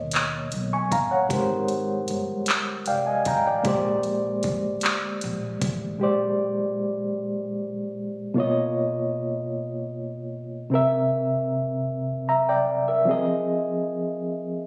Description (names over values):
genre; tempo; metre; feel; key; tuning
slow six-eight R&B; 51 BPM (dotted quarters); 6/8; straight; unclear; A4 = 440 Hz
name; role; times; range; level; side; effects
reed electric piano; accompaniment; 0.0-14.7 s; Bb2 to C#6; -26 LUFS; equal; overdrive, tremolo
upright bass; bass; 0.0-6.0 s; F1 to D#2; -36 LUFS; equal; none
smooth R&B drum kit; drums; 0.1-5.8 s; handclaps, hi-hat, kick drum; -29 LUFS; equal; none
room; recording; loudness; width
light reverb; recorded on a phone in the room, studio reverb; -25 LUFS; mono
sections
0.0-8.4 A section; 8.4-14.7 B section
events
reed electric piano fill 2.5-3.7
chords
0.0 Bmaj9; 1.3 Abmaj9; 3.7 Bb13; 8.4 Bmaj9#11; 10.7 C7; 13.1 Fm7